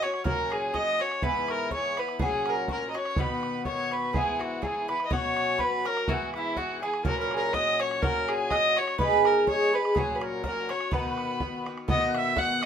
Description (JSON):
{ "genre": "celtic folk, Celtic polka", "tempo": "124 BPM", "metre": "2/4", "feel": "swing 54% on 8ths", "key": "unclear", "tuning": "A4 = 440 Hz", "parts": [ { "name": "warm fiddle", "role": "melody", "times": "0.0-12.7 s", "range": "E4 to F#5", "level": "-28 LUFS", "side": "equal", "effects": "none" }, { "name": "bowl-back mandolin", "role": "second line", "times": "0.0-12.7 s", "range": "F#4 to F#5", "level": "-37 LUFS", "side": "right 2 dB", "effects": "none" }, { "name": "bright wooden whistle", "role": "second line", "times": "0.0-12.7 s", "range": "E5 to F#6", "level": "-37 LUFS", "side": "left 5 dB", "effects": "none" }, { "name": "Irish bouzouki", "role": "accompaniment", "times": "0.0-12.7 s", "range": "G#2 to G#4", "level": "-30 LUFS", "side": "equal", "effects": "none" }, { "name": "bodhran", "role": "percussion", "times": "0.0-12.7 s", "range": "none", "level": "-32 LUFS", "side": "right 1 dB", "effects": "none" } ], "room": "light reverb", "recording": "minimal, uncompressed stereo recording", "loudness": "-24 LUFS", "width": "side -8 dB against mid", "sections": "0.0-4.1 A section; 4.1-11.9 A section", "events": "none", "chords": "0.0 F#; 1.2 E; 2.2 F#; 3.2 B; 4.1 E; 5.1 F#sus4; 6.1 E; 7.1 F#; 9.0 G#m; 10.0 F#; 10.9 B", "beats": "| 0.25 0.74 | 1.23 1.71 | 2.20 2.69 | 3.17 3.66 | 4.14 4.63 | 5.11 5.60 | 6.08 6.57 | 7.05 7.54 | 8.02 8.51 | 8.99 9.47 | 9.96 10.44 | 10.92 11.40 | 11.88 12.37" }